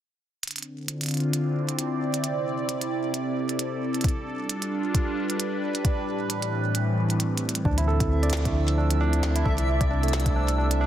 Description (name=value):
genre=IDM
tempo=133 BPM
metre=4/4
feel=swing 56% on 16ths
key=D dorian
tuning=A4 = 440 Hz
part: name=phased analog pad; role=sustained chords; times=0.7-10.9 s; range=A2 to D5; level=-26 LUFS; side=equal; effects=phaser, chorus
part: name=glitchy drum kit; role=drums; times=0.4-10.8 s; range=hi-hat, snare drum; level=-32 LUFS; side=right 2 dB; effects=overdrive, digital delay
part: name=electronic kick drum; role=drums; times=4.0-10.3 s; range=none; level=-25 LUFS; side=equal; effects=overdrive
part: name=barky tine electric piano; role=arpeggios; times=7.7-10.9 s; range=A3 to D5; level=-28 LUFS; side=right 5 dB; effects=overdrive, digital delay
part: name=warm sub bass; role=bass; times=7.7-10.9 s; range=C2 to D2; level=-24 LUFS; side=left 1 dB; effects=none
part: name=backwards swelling texture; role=texture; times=8.2-10.9 s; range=E5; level=-34 LUFS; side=right 3 dB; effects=built-in reverb
room=light reverb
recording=dense, heavily limited modern master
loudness=-23 LUFS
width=side -11 dB against mid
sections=0.4-7.7 A section; 7.7-10.9 B section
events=kick drops out 6.7-7.7; drum fill 7.4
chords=0.4 Dm7; 2.2 C69; 4.0 G7; 5.8 Am11; 7.7 Dm7; 9.5 C69